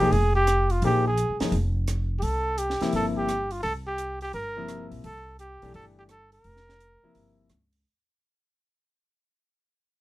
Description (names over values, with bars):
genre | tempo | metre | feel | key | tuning
modal jazz | 171 BPM | 4/4 | swing 65% on 8ths | unclear | A4 = 442 Hz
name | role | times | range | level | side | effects
mellow trumpet | melody | 0.0-7.5 s | F4 to Bb4 | -26 LUFS | right 1 dB | none
clear concert grand piano | accompaniment | 0.0-7.5 s | C3 to Ab4 | -29 LUFS | left 3 dB | none
upright bass | bass | 0.0-7.8 s | F1 to Db2 | -27 LUFS | equal | none
compact cocktail drum kit | drums | 0.0-7.8 s | hi-hat, rim click, snare drum | -37 LUFS | right 3 dB | none
room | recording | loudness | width
light reverb | none | -23 LUFS | side -17 dB against mid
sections
0.0-7.8 A section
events
fade-out 0.0-7.8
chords
0.0 Bb7sus4; 2.2 C7sus4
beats
0.12 0.47 | 0.83 1.18 1.53 1.88 | 2.23 2.58 2.93 3.28 | 3.63 3.99 4.34 4.69 | 5.04 5.39 5.74 6.09 | 6.44 6.79 7.15 7.50